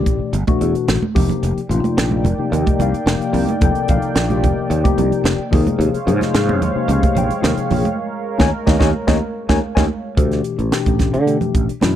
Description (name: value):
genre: electric jazz fusion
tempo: 110 BPM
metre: 4/4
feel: straight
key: unclear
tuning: A4 = 439 Hz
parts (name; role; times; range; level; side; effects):
- mellow tine electric piano; accompaniment; 0.0-12.0 s; B2 to Ab5; -21 LUFS; left 6 dB; phaser
- sustaining fretless electric bass; bass; 0.0-11.9 s; F1 to D3; -18 LUFS; right 1 dB; lush chorus
- crisp fusion drum kit; drums; 0.1-12.0 s; hi-hat, kick drum, snare drum; -18 LUFS; right 1 dB; none
- congas; percussion; 0.5-11.9 s; none; -23 LUFS; right 5 dB; none
- dark analog pad; sustained chords; 1.4-10.1 s; Ab3 to G5; -24 LUFS; right 1 dB; chorus
room: small room ambience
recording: dry, close 1970s-style studio recording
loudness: -15 LUFS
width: side -11 dB against mid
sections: 0.0-10.2 A section; 10.2-12.0 B section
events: drum fill 0.9-1.4; band accent 8.0-10.2; tine electric piano fill 9.4-10.2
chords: 0.0 A13sus4; 1.2 F13sus4; 5.5 Eb13sus4; 10.2 Dsus24